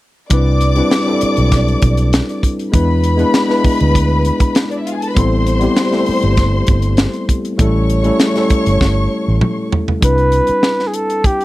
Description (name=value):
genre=lush 1970s-style soul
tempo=99 BPM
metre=4/4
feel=straight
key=C major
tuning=A4 = 439 Hz
part: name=warm studio string section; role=second line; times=0.3-9.7 s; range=D4 to D6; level=-21 LUFS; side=left 1 dB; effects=none
part: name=tine electric piano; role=accompaniment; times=0.3-11.4 s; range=G3 to C5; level=-17 LUFS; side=left 1 dB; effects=none
part: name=vintage muted fingered electric bass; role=bass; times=0.3-10.5 s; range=G1 to E2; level=-15 LUFS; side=equal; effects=none
part: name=tight funk drum kit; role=drums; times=0.3-11.4 s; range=hi-hat, kick drum, snare drum, toms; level=-15 LUFS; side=equal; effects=none
part: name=warm flugelhorn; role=melody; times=10.1-11.4 s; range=G4 to B4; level=-15 LUFS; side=equal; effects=none
room=little or no reverb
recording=dry, close 1970s-style studio recording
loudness=-12 LUFS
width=side -17 dB against mid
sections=0.3-10.0 A section; 10.0-11.4 B section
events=drum fill 8.8-10.0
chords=0.3 Cmaj9; 2.7 E7; 5.2 Am9; 7.6 A7; 10.0 Cmaj9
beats=| 0.30 0.91 1.52 2.12 | 2.73 3.34 3.95 4.55 | 5.16 5.77 6.38 6.99 | 7.59 8.20 8.81 9.42 | 10.03 10.63 11.24